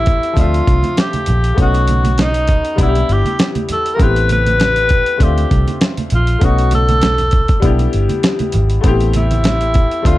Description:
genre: lush 1970s-style soul.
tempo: 99 BPM.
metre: 4/4.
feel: swing 54% on 16ths.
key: D dorian.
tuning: A4 = 440 Hz.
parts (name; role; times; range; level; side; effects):
clear tenor saxophone; melody; 0.0-10.2 s; D#4 to B4; -18 LUFS; left 1 dB; slapback echo.
bright grand piano; accompaniment; 0.0-10.2 s; F3 to E5; -21 LUFS; left 4 dB; none.
vintage muted fingered electric bass; bass; 0.0-10.2 s; G1 to D2; -15 LUFS; equal; none.
dusty soul sampler-style drum kit; drums; 0.1-10.2 s; hi-hat, kick drum, snare drum; -15 LUFS; equal; overdrive.
congas; percussion; 0.1-10.2 s; none; -24 LUFS; right 4 dB; none.
room: small room ambience.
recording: dark, warm production.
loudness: -12 LUFS.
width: side -16 dB against mid.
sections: 0.0-10.2 A section.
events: none.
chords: 0.4 Dm9; 1.6 B7; 2.8 Em7; 4.0 Am9; 5.2 Dm9; 6.4 B7; 7.6 Em7; 8.8 Am9.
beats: 0.37 0.97 | 1.58 2.19 2.79 3.40 | 4.00 4.61 5.21 5.82 | 6.42 7.03 7.63 8.24 | 8.84 9.45 10.05.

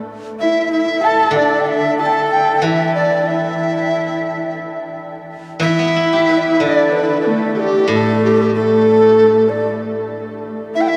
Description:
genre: chinese traditional, Chinese chamber ensemble.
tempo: 93 BPM.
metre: 4/4.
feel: rubato.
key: A shang mode.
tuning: A4 = 440 Hz.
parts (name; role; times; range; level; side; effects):
reedy large dizi; melody; 0.4-11.0 s; G4 to A5; -20 LUFS; equal; tape echo.
warm horsehead fiddle; second line; 0.4-11.0 s; A3 to A4; -22 LUFS; equal; tape echo.
xiao; second line; 0.4-11.0 s; G4 to A5; -23 LUFS; equal; tape echo.
steel-string zither; accompaniment; 1.3-9.8 s; A2 to B4; -24 LUFS; equal; none.
room: wet huge ambient reverb, RT60 9.0 s.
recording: dreamy mix soaked in reverb.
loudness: -15 LUFS.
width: mono.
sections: 0.0-11.0 A section.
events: none.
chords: none.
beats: | 0.06 0.70 1.34 1.99 | 2.65 3.30 3.95 4.62 | 5.30 5.97 6.62 7.27 | 7.92 8.55 9.18 9.81 | 10.45.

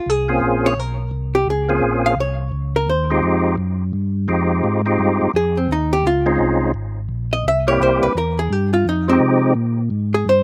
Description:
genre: soul jazz organ trio.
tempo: 170 BPM.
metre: 4/4.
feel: swing 64% on 8ths.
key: F minor.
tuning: A4 = 440 Hz.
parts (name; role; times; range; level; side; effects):
archtop guitar, miked and amplified; accompaniment; 0.0-10.4 s; C4 to F5; -21 LUFS; equal; none.
mellow tonewheel organ; bass; 0.1-10.4 s; Ab1 to C3; -23 LUFS; equal; chorus vibrato, slow rotary speaker.
percussive tonewheel organ; melody; 0.3-9.5 s; F3 to Ab4; -21 LUFS; equal; slow rotary speaker, overdrive, chorus vibrato.
room: little or no reverb.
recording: recorded outdoors, with no room sound.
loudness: -18 LUFS.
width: mono.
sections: 0.0-10.4 A section.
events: hollow-body jazz guitar solo 0.0-10.4.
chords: 0.4 Bbm7; 3.2 Fm7; 6.0 Dbmaj7; 7.5 C7; 8.9 Fm7; 9.6 Absus2.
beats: 0.06 | 0.41 0.77 1.12 1.47 | 1.82 2.17 2.52 2.88 | 3.23 3.58 3.93 4.29 | 4.64 4.99 5.34 5.69 | 6.04 6.40 6.75 7.10 | 7.45 7.80 8.15 8.51 | 8.86 9.21 9.56 9.91 | 10.26.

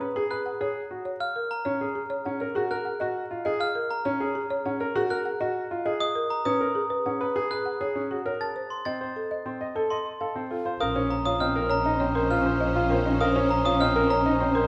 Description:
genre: classical, minimalist pattern music.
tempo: 100 BPM.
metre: 4/4.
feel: straight.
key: Eb minor, Bb minor from 10.8 s.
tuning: A4 = 439 Hz.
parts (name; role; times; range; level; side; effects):
folk marimba with medium hard mallets; melody; 0.0-14.7 s; Ab4 to C6; -33 LUFS; equal; none.
bright baby grand piano; arpeggios; 0.0-14.7 s; C4 to Eb5; -32 LUFS; equal; none.
glockenspiel with brass mallets; arpeggios; 0.3-14.3 s; Bb5 to A6; -33 LUFS; equal; none.
mellow hollow alto flute; second line; 10.8-14.7 s; Db4; -32 LUFS; equal; none.
warm symphonic violin section; sustained chords; 10.8-14.7 s; Db4 to C5; -34 LUFS; equal; none.
clear double bass; bass; 10.8-14.7 s; Bb1; -32 LUFS; equal; none.
room: wet recital hall reverb, RT60 1.6 s.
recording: none.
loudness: -27 LUFS.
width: mono.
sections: 0.0-10.8 A section; 10.8-14.7 B section.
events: none.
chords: 0.0 Abm7; 1.2 Ebm11 (rootless); 6.0 Abm9; 8.4 F7 (rootless); 10.8 Bbmadd9.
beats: 0.01 0.61 | 1.21 1.81 2.41 3.01 | 3.61 4.21 4.81 5.41 | 6.01 6.61 7.21 7.81 | 8.41 9.01 9.61 10.21 | 10.81 11.41 12.01 12.61 | 13.21 13.81 14.41.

